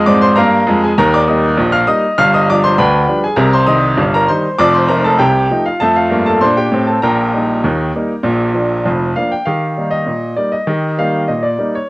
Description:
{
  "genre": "ragtime piano",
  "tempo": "99 BPM",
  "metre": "2/4",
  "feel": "straight",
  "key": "Eb major",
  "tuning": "A4 = 441 Hz",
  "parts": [
    { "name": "clear baby grand piano", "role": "solo", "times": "0.0-11.9 s", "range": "F1 to F6", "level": "-11 LUFS", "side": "equal", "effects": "cassette tape" }
  ],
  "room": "light reverb, studio reverb",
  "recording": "home recording on cassette",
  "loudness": "-11 LUFS",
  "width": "side -22 dB against mid",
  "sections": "0.0-9.5 A section; 9.5-11.9 B section",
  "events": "none",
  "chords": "0.0 Bb7/F; 1.0 Eb; 2.2 G7; 3.4 Cm; 4.6 F7; 7.0 Eb/Bb; 8.2 Bb; 9.5 Eb",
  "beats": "0.36 | 0.97 1.57 | 2.18 2.78 | 3.38 3.99 | 4.59 5.20 | 5.81 6.41 | 7.03 7.64 | 8.25 8.86 | 9.47 10.08 | 10.69 11.29"
}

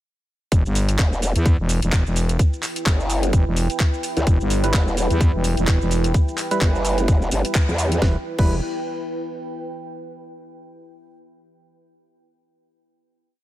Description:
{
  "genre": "bass house",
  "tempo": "128 BPM",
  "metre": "4/4",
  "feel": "swing 57% on 16ths",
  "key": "E minor",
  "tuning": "A4 = 442 Hz",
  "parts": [
    { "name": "growling FM bass", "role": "bass", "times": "0.5-8.6 s", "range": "E1 to E2", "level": "-20 LUFS", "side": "equal", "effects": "overdrive, sidechain pumping" },
    { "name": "electronic kick drum", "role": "drums", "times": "0.5-8.5 s", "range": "none", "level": "-17 LUFS", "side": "equal", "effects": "none" },
    { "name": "garage drum kit", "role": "drums", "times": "0.5-8.5 s", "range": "crash cymbal, handclaps, hi-hat, shaker, snare drum", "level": "-27 LUFS", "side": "equal", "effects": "none" },
    { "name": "deep dark ambient pad", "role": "texture", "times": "1.8-9.9 s", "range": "E4 to G5", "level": "-29 LUFS", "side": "right 1 dB", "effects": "chorus, built-in reverb, sidechain pumping" },
    { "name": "growl bass", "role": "bass", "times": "1.0-8.0 s", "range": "E1 to E2", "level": "-21 LUFS", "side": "equal", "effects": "chorus, overdrive, sidechain pumping" },
    { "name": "percussive organ stab", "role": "stabs", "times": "4.6-8.6 s", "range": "G3 to B4", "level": "-27 LUFS", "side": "right 2 dB", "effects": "chorus, sidechain pumping, dub echo" }
  ],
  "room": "digital ambience",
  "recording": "none",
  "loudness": "-18 LUFS",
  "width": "side -14 dB against mid",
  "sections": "0.5-8.0 drop; 8.0-9.9 final chord",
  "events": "drop 0.5-8.0; band accent 7.6",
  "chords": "0.5 Em",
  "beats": "| 0.52 0.99 1.46 1.93 | 2.39 2.86 3.33 3.80 | 4.27 4.74 5.21 5.68 | 6.14 6.61 7.08 7.55 | 8.02 8.49 8.96 9.43"
}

